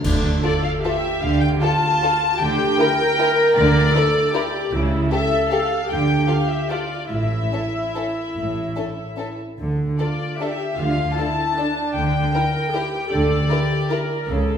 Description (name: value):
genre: classical, orchestral ballroom waltz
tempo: 138-165 BPM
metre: 3/4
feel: rubato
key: D minor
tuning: A4 = 442 Hz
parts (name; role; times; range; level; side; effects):
- warm studio violin section; melody; 0.0-14.3 s; D5 to A5; -24 LUFS; left 3 dB; none
- dark studio viola section; accompaniment; 0.0-14.6 s; D4 to Bb4; -23 LUFS; equal; none
- warm studio cello section; bass; 0.0-14.6 s; A2 to D3; -26 LUFS; right 3 dB; none
- clash cymbals and concert bass drum; percussion; 0.0-0.8 s; none; -25 LUFS; equal; none
- timpani; percussion; 0.0-0.6 s; D3; -28 LUFS; left 1 dB; none
- warm studio double bass section; bass; 0.1-14.6 s; A1 to D2; -24 LUFS; right 1 dB; none
- dark studio violin section; second line; 0.4-14.0 s; C#4 to Bb4; -28 LUFS; left 3 dB; none
room: wet recital hall reverb, RT60 1.4 s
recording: heard from further back in the room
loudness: -18 LUFS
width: side -8 dB against mid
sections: 0.0-14.6 A section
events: band accent 0.0-0.4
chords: 0.0 Dm; 2.4 Em7b5/D (rootless); 4.7 A/C#; 5.9 Dm; 7.1 A5; 9.6 Dm; 11.9 Em7b5/D (rootless)